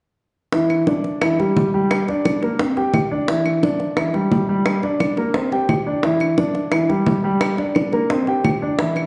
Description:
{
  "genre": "Afro-Cuban jazz",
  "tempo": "174 BPM",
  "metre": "4/4",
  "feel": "straight",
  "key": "unclear",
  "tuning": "A4 = 440 Hz",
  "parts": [
    { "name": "warm concert grand piano", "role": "accompaniment", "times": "0.5-9.1 s", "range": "E3 to G5", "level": "-21 LUFS", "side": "equal", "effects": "none" },
    { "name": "bongos", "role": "percussion", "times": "0.5-9.1 s", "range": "none", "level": "-24 LUFS", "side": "equal", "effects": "none" },
    { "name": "claves", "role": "percussion", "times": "0.7-9.1 s", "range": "none", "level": "-33 LUFS", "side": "equal", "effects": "none" }
  ],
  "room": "wet recital hall reverb, RT60 1.3 s",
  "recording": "dark, warm production, nothing above 10.5 kHz",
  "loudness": "-19 LUFS",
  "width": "mono",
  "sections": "0.5-9.1 A section",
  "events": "none",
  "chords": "0.5 Dsus2; 1.2 Em; 1.9 G5; 2.6 C5; 3.3 Dsus2; 4.0 Em; 4.7 G5; 5.3 C5; 6.0 Dsus2; 6.7 Em; 7.4 G5; 8.1 C5"
}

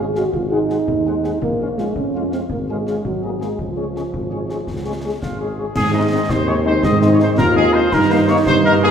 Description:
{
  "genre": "military-style march for wind band",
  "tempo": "111 BPM (dotted quarters)",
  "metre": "6/8",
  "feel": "straight",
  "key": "Db major, Ab major from 5.8 s",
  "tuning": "A4 = 441 Hz",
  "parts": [
    { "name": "mellow trumpet section", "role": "melody", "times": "0.0-8.9 s", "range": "F4 to Gb5", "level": "-21 LUFS", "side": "equal", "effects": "none" },
    { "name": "mellow euphonium", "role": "second line", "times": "0.0-8.9 s", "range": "F3 to Ab4", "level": "-20 LUFS", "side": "right 2 dB", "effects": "none" },
    { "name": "warm French horn section", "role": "accompaniment", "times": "0.0-8.9 s", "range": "Ab3 to Ab4", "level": "-24 LUFS", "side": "left 4 dB", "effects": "none" },
    { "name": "mellow tuba", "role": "bass", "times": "0.0-8.9 s", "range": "Ab1 to Ab2", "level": "-21 LUFS", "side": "right 1 dB", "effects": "none" },
    { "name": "concert snare drum, concert bass drum and clash cymbals", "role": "drums", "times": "0.2-8.6 s", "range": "none", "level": "-26 LUFS", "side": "left 2 dB", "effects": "none" },
    { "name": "mellow trombone section", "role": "sustained chords", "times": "5.8-8.9 s", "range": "Eb3 to Eb4", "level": "-24 LUFS", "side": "right 1 dB", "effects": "none" }
  ],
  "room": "wet scoring stage reverb, RT60 2.1 s",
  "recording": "recorded in a church or concert hall",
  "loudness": "-16 LUFS",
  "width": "side -8 dB against mid",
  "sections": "0.0-5.8 A section; 5.8-8.9 B section",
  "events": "none",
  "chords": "0.3 Ab7; 1.4 Bbm7; 2.5 Db/Ab; 3.0 Ab9; 3.6 Db; 5.8 Ab; 7.9 Eb/G"
}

